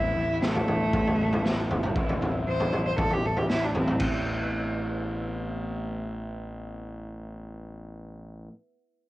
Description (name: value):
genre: quiet-loud alternative rock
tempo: 116 BPM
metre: 4/4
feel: straight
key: A minor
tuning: A4 = 441 Hz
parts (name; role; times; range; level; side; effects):
- rich cello; melody; 0.0-4.0 s; A3 to C5; -28 LUFS; equal; cassette tape
- electric guitar through a small old amp; arpeggios; 0.0-8.5 s; A2 to E4; -35 LUFS; equal; wide subtle chorus, cassette tape, analog delay
- fuzz picked electric bass; bass; 0.0-8.5 s; G1 to A1; -33 LUFS; equal; overdrive
- raw garage drum kit; drums; 0.4-4.1 s; crash cymbal, kick drum, snare drum, toms; -28 LUFS; equal; cassette tape
room: little or no reverb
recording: home recording on cassette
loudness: -25 LUFS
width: side -17 dB against mid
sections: 0.0-4.0 A section; 4.0-8.1 B section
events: cello solo 0.0-4.0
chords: 0.0 Amadd9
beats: 0.41 0.93 1.44 | 1.96 2.47 2.98 3.50 | 4.01 4.53 5.04 5.56 | 6.08 6.59 7.11 7.62